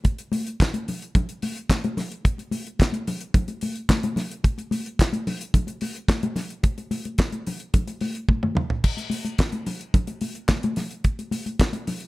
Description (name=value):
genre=disco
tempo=109 BPM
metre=4/4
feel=straight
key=none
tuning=none
part: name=damped 70s drum kit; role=drums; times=0.0-12.1 s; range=crash cymbal, handclaps, hi-hat, kick drum, snare drum, toms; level=-23 LUFS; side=equal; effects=none
part: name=congas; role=percussion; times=0.0-12.0 s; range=none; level=-28 LUFS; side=left 2 dB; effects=none
room=light reverb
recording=none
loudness=-23 LUFS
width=side -20 dB against mid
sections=0.0-8.8 A section; 8.8-12.1 B section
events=drum fill 8.3-8.8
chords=none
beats=| 0.05 0.60 1.15 1.70 | 2.25 2.80 3.34 3.89 | 4.44 4.99 5.54 6.09 | 6.64 7.19 7.74 8.29 | 8.84 9.39 9.94 10.49 | 11.04 11.60